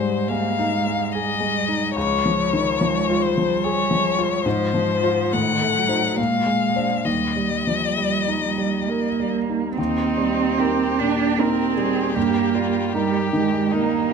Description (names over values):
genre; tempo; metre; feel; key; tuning
classical, slow romantic movement for piano quartet; 64-78 BPM; 3/4; rubato; Eb major from 4.5 s; A4 = 441 Hz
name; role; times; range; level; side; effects
rich violin; melody; 0.0-14.1 s; G4 to F#5; -24 LUFS; left 6 dB; none
dark cello; second line; 0.0-14.1 s; Eb3 to D4; -24 LUFS; right 10 dB; none
clear grand piano; accompaniment; 0.0-14.1 s; Db2 to C5; -23 LUFS; left 1 dB; none
warm violin; second line; 9.8-14.1 s; Eb4 to Bb4; -29 LUFS; left 4 dB; none
room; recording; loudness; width
wet recital hall reverb, RT60 1.4 s; close, detailed microphones; -19 LUFS; side -6 dB against mid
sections
0.0-9.8 A section; 9.8-14.1 B section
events
none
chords
0.0 Ab5; 2.0 Db; 4.5 Fm/Ab; 5.3 Adim7; 6.2 Bb9; 7.1 Eb; 12.2 Eb/G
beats
0.29 1.13 | 1.96 2.81 3.63 | 4.45 5.33 6.18 | 7.06 7.98 8.89 | 9.78 10.60 11.39 | 12.16 12.94 13.74